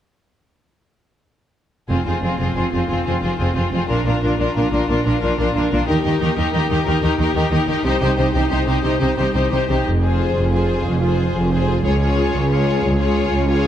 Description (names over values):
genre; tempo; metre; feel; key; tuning
cinematic; 121 BPM (dotted quarters); 12/8; straight; F dorian, F minor from 9.9 s; A4 = 441 Hz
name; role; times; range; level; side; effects
rich symphonic violin section; melody; 1.9-13.7 s; Ab4 to Db5; -26 LUFS; left 4 dB; none
clear studio violin section; second line; 1.9-13.7 s; F4 to Ab4; -24 LUFS; left 4 dB; none
rich symphonic viola section; accompaniment; 1.9-13.7 s; C4 to F4; -23 LUFS; right 1 dB; none
rich symphonic double bass section; bass; 1.9-13.7 s; F1 to Eb2; -22 LUFS; right 1 dB; none
warm studio cello section; bass; 1.9-13.7 s; Db2 to Eb3; -21 LUFS; right 1 dB; none
room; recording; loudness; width
moderate scoring stage reverb, RT60 2.1 s; dark, warm production; -16 LUFS; side -10 dB against mid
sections
1.9-9.9 A section; 9.9-13.7 B section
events
build-up 9.9-13.7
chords
1.9 Fm; 3.9 Bb; 5.9 Eb; 7.9 Cm; 9.9 Fm; 11.8 Db